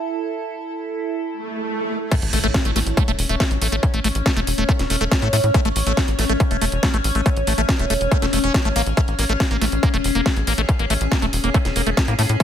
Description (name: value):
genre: psychedelic trance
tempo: 140 BPM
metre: 4/4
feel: straight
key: A major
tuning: A4 = 440 Hz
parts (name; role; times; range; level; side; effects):
- evolving wavetable pad; sustained chords; 0.0-12.4 s; C#4 to C#5; -25 LUFS; left 1 dB; chorus, built-in reverb, phaser, vintage 12-bit sampler grit, sidechain pumping
- swell and impact; sound effects; 1.4-3.8 s; none; -29 LUFS; right 1 dB; none
- liquid acid bass; riff; 2.1-12.4 s; A3 to C#4; -25 LUFS; moving between left 4 dB and right 4 dB; phaser, auto-pan, sidechain pumping, tape echo
- electronic kick drum; drums; 2.1-12.4 s; none; -19 LUFS; equal; distortion, overdrive
- techno drum kit; drums; 2.1-12.4 s; crash cymbal, hi-hat, snare drum; -25 LUFS; equal; overdrive
- tight sequencer bass; bass; 2.2-12.4 s; E1 to A2; -22 LUFS; equal; none
room: digital ambience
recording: none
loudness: -17 LUFS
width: side -9 dB against mid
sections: 0.0-2.1 A section; 2.1-12.4 B section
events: swell 1.4-2.1; drop 2.1-12.4; impact 2.1-3.8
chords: 0.0 A5